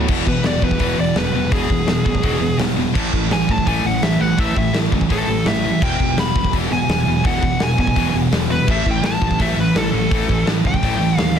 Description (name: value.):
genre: punk rock.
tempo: 168 BPM.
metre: 4/4.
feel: straight.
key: E major.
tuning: A4 = 440 Hz.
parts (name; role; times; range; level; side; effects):
distorted electric guitar; riff; 0.0-11.4 s; E2 to A3; -23 LUFS; right 10 dB; distortion.
thick fuzz guitar; riff; 0.0-11.4 s; E2 to A3; -24 LUFS; equal; distortion.
tight distorted guitar; riff; 0.0-11.4 s; E2 to A3; -25 LUFS; left 11 dB; distortion.
fuzz picked electric bass; bass; 0.0-11.4 s; E1 to D#2; -24 LUFS; equal; overdrive.
big rock drum kit; drums; 0.1-11.4 s; crash cymbal, hi-hat, kick drum, snare drum; -21 LUFS; equal; none.
high-gain lead guitar; melody; 0.3-11.3 s; G#4 to B5; -22 LUFS; left 1 dB; distortion.
room: little or no reverb.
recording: dense, heavily limited modern master.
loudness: -15 LUFS.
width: side -8 dB against mid.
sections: 0.1-11.4 A section.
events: lead electric guitar solo 0.1-11.4.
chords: 0.1 E; 3.0 A5; 5.8 E; 8.7 A5.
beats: | 0.09 0.45 0.81 1.16 | 1.52 1.88 2.24 2.59 | 2.95 3.31 3.67 4.03 | 4.38 4.74 5.10 5.46 | 5.82 6.17 6.53 6.89 | 7.25 7.61 7.96 8.32 | 8.68 9.04 9.39 9.75 | 10.11 10.46 10.82 11.18.